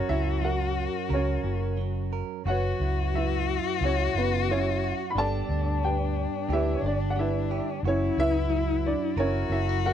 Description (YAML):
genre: acoustic folk-pop ballad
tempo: 89 BPM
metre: 4/4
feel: straight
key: unclear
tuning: A4 = 438 Hz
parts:
  - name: dark upright piano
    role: melody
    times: 0.0-9.9 s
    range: B3 to B5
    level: -29 LUFS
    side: right 2 dB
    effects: none
  - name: dark cello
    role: second line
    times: 0.0-9.9 s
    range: D4 to F#4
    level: -31 LUFS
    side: left 11 dB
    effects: none
  - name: direct-recorded clean electric guitar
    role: accompaniment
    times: 0.0-9.9 s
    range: F#2 to A#4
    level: -34 LUFS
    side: right 12 dB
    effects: none
  - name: vintage muted fingered electric bass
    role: bass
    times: 0.1-9.9 s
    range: F#1 to D2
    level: -28 LUFS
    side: equal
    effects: none
room: light reverb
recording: dry, close 1970s-style studio recording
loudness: -24 LUFS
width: side -10 dB against mid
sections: 0.0-9.9 A section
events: none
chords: 0.0 F#; 2.5 F#7sus4; 5.2 G; 7.8 F#7sus4; 9.2 F#7